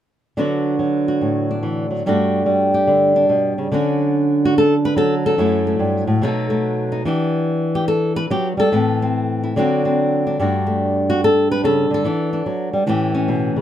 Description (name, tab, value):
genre	solo jazz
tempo	144 BPM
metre	4/4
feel	swing 67% on 8ths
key	D major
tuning	A4 = 437 Hz
part	flamenco guitar	solo	0.4-13.6 s	F#2 to B4	-16 LUFS	equal	none
room	moderate studio ambience, RT60 0.5 s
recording	minimal, uncompressed stereo recording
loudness	-16 LUFS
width	side -10 dB against mid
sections	0.4-3.7 A section; 3.7-13.6 B section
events	none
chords	0.4 D6; 2.0 Gmaj9; 3.7 Dmaj7; 5.4 F#m7; 6.2 B7; 7.0 Em7; 8.7 Am; 9.6 D7; 10.4 Gsus2; 12.1 Em7; 12.9 A7